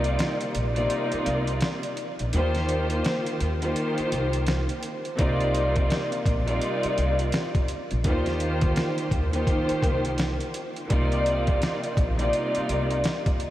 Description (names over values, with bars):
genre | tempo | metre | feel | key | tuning
hip hop, boom-bap hip-hop | 84 BPM | 4/4 | swing 62% on 16ths | C minor | A4 = 439 Hz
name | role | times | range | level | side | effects
warm studio string section | accompaniment | 0.0-13.3 s | C3 to D5 | -26 LUFS | equal | cassette tape, high-pass filter, low-pass filter
upright bass | bass | 0.0-13.0 s | Bb1 to Eb2 | -27 LUFS | equal | none
trip hop sampler-style drum kit | drums | 0.0-13.5 s | hi-hat, kick drum, snare drum | -28 LUFS | equal | none
room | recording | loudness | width
moderate huge ambient reverb, RT60 8.3 s | dreamy mix soaked in reverb, vinyl crackle | -23 LUFS | side -14 dB against mid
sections
0.0-13.5 A section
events
break 0.0-5.2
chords
0.0 Cm11; 2.3 Eb6; 5.2 Cm11; 8.0 Eb6; 10.9 Cm11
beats
0.19 0.90 1.62 | 2.33 3.04 3.76 4.47 | 5.19 5.90 6.62 7.33 | 8.04 8.76 9.47 10.19 | 10.90 11.62 12.33 13.04